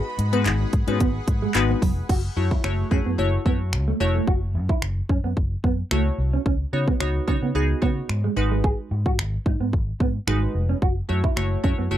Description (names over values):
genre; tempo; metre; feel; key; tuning
dance-pop; 110 BPM; 4/4; straight; F# dorian; A4 = 438 Hz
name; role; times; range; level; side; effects
glassy wavetable pluck; accompaniment; 0.0-12.0 s; G#3 to C#5; -27 LUFS; left 2 dB; chorus, sidechain pumping
shimmering ambient pad; sustained chords; 0.0-2.1 s; G#4 to B5; -37 LUFS; right 1 dB; chorus, built-in reverb, sidechain pumping
mellow electric guitar; riff; 0.2-11.9 s; F#3 to G#4; -28 LUFS; right 5 dB; wide subtle chorus
vintage muted fingered electric bass; bass; 0.2-12.0 s; E#1 to C#3; -24 LUFS; equal; sidechain pumping
pop drum kit; drums; 0.2-11.8 s; crash cymbal, finger snaps, handclaps, hi-hat, kick drum; -23 LUFS; equal; overdrive
room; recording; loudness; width
little or no reverb; dry, close 1970s-style studio recording; -20 LUFS; side -12 dB against mid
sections
0.0-2.1 A section; 2.1-12.0 B section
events
none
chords
0.0 G#m7; 2.1 F#m7; 6.5 C#9sus4; 8.4 G#m7; 10.8 F#m7